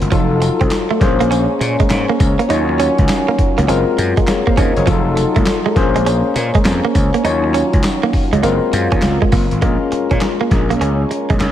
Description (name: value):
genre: R&B, new jack swing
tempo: 101 BPM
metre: 4/4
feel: swing 64% on 16ths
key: Bb minor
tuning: A4 = 442 Hz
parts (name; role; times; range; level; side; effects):
- barky tine electric piano; accompaniment; 0.0-11.5 s; Gb3 to F5; -19 LUFS; left 6 dB; phaser
- dark French horn section; sustained chords; 0.0-11.5 s; Eb3 to A4; -21 LUFS; right 1 dB; none
- gritty slap bass; bass; 0.0-11.5 s; F1 to Bb2; -18 LUFS; equal; overdrive
- dusty soul sampler-style drum kit; drums; 0.0-11.5 s; handclaps, hi-hat, kick drum, snare drum, tambourine; -17 LUFS; equal; overdrive
- direct-recorded clean electric guitar; riff; 0.1-11.4 s; F3 to Eb4; -20 LUFS; right 6 dB; lush chorus
room: light reverb, digital ambience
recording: none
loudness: -13 LUFS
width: side -11 dB against mid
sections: 0.0-9.6 A section; 9.6-11.5 B section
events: none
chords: 0.1 F7b9; 1.0 Bbm9; 2.5 Ebm9; 3.7 Gbmaj9#11; 4.9 F7b9; 5.8 Bbm9; 7.2 Ebm9; 8.4 Gbmaj9#11; 9.6 Bbm7